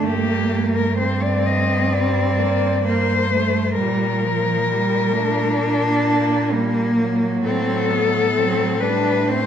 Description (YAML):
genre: classical, lyrical piece for cello ensemble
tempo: 65 BPM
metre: 4/4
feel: rubato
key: G minor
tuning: A4 = 439 Hz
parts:
  - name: warm cello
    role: melody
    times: 0.0-9.5 s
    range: G4 to Eb5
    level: -22 LUFS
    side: left 6 dB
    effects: none
  - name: rich cello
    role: second line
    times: 0.0-9.5 s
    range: F3 to Bb3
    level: -26 LUFS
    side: right 8 dB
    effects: none
  - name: warm cello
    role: accompaniment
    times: 0.0-9.5 s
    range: F3 to D4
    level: -22 LUFS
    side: equal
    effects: none
  - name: warm cello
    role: bass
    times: 0.0-9.5 s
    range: G2 to Bb2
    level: -24 LUFS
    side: right 2 dB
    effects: none
room: wet recital hall reverb, RT60 1.6 s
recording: none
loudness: -17 LUFS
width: side -9 dB against mid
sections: 0.0-9.5 A section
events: none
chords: 0.0 Gm; 3.8 Gm/Bb; 7.4 F#dim/A